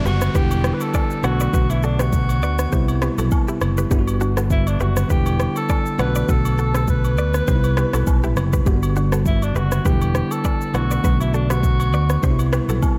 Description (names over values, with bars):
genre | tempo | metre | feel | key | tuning
afrobeats | 101 BPM | 4/4 | swing 55% on 16ths | unclear | A4 = 440 Hz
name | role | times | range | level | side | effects
breathy alto saxophone | melody | 0.0-12.4 s | D4 to B4 | -29 LUFS | equal | tape echo
bell-like tine electric piano | accompaniment | 0.0-13.0 s | C3 to F#4 | -26 LUFS | equal | none
fingered electric bass | bass | 0.0-12.8 s | E1 to D2 | -22 LUFS | equal | none
downlifter | sound effects | 0.0-3.9 s | none | -42 LUFS | equal | none
direct-recorded clean electric guitar | riff | 0.1-12.8 s | D4 to F#5 | -33 LUFS | equal | tape echo
deep house drum kit | drums | 0.1-13.0 s | kick drum, rim click, shaker | -24 LUFS | equal | none
agogo bells and woodblock | percussion | 0.5-13.0 s | none | -37 LUFS | equal | none
room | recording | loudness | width
light reverb, digital ambience | none | -19 LUFS | mono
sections
0.0-13.0 A section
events
none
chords
0.3 Em7; 1.2 Bm7; 2.7 Cmaj7; 3.9 Gmaj7; 5.1 Em7; 6.0 Bm7; 7.5 Cmaj7; 8.7 Gmaj7; 9.9 Em7; 10.7 Bm7; 12.2 Cmaj7